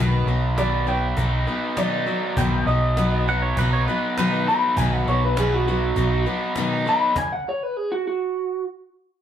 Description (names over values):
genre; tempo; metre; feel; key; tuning
folk rock and heartland rock; 100 BPM; 4/4; straight; unclear; A4 = 439 Hz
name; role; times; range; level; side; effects
picked steel-string acoustic guitar; accompaniment; 0.0-7.2 s; B2 to B4; -26 LUFS; left 4 dB; none
raw garage guitar; riff; 0.0-7.2 s; B2 to D#4; -26 LUFS; right 1 dB; overdrive
fingered electric bass; bass; 0.0-6.2 s; B1; -22 LUFS; equal; none
cajon; drums; 0.3-7.3 s; none; -32 LUFS; equal; none
electric guitar through a small old amp; melody; 0.6-8.6 s; F#4 to B5; -24 LUFS; right 1 dB; none
pedal steel guitar; second line; 3.3-4.5 s; B4 to F#5; -26 LUFS; right 3 dB; none
room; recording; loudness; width
moderate large studio reverb, RT60 0.9 s; band playing live in one room; -19 LUFS; side -9 dB against mid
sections
0.0-9.2 A section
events
clean electric guitar solo 0.0-9.2; stop 7.2-9.2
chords
0.0 B